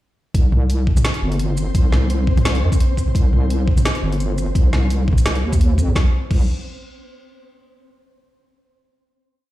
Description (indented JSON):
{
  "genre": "half-time drum and bass",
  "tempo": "171 BPM",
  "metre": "4/4",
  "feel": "swing 55% on 16ths, half-time",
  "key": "C minor",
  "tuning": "A4 = 440 Hz",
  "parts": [
    { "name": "deep soft wobble bass", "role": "bass", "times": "0.3-6.5 s", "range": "G1 to G2", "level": "-18 LUFS", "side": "equal", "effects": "chorus" },
    { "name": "drum and bass drum kit", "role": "drums", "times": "0.3-6.4 s", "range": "crash cymbal, hi-hat, shaker, snare drum, toms", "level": "-24 LUFS", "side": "equal", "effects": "overdrive" },
    { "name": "electronic kick drum", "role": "drums", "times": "0.3-6.4 s", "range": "none", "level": "-16 LUFS", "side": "equal", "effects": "overdrive" },
    { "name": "flickering grainy texture", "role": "texture", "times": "0.9-6.0 s", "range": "C4 to C5", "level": "-30 LUFS", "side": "left 1 dB", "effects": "built-in reverb" }
  ],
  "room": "little or no reverb",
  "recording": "played on a big sound system in a bare room, large studio reverb",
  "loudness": "-15 LUFS",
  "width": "side -16 dB against mid",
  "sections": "0.3-6.0 drop; 6.0-7.4 final note",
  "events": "drop 0.3-6.0",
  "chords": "0.3 C5; 6.0 N.C.",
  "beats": "| 0.34 0.70 1.05 1.40 | 1.75 2.10 2.45 2.80 | 3.15 3.50 3.85 4.21 | 4.56 4.91 5.26 5.61 | 5.96 6.31"
}